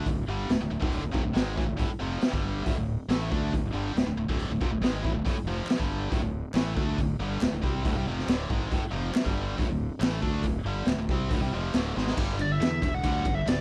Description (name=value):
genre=classic rock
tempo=139 BPM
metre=4/4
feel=straight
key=unclear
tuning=A4 = 439 Hz
part: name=tight distorted guitar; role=riff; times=0.0-13.6 s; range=D2 to D4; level=-34 LUFS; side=equal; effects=distortion
part: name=fuzz fingered electric bass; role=bass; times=0.0-13.6 s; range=D1 to E2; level=-34 LUFS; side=equal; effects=overdrive
part: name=raw garage drum kit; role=drums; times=0.1-13.6 s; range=crash cymbal, hi-hat, kick drum, ride cymbal, snare drum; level=-32 LUFS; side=equal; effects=none
part: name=group handclap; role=percussion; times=5.7-11.8 s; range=none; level=-47 LUFS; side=equal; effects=none
part: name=biting lead guitar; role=melody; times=12.4-13.6 s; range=D5 to F#5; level=-33 LUFS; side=equal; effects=overdrive, slapback echo
room=light reverb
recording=none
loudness=-28 LUFS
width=mono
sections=0.0-12.2 A section; 12.2-13.6 B section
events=drum fill 12.0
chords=0.0 D5; 12.2 G5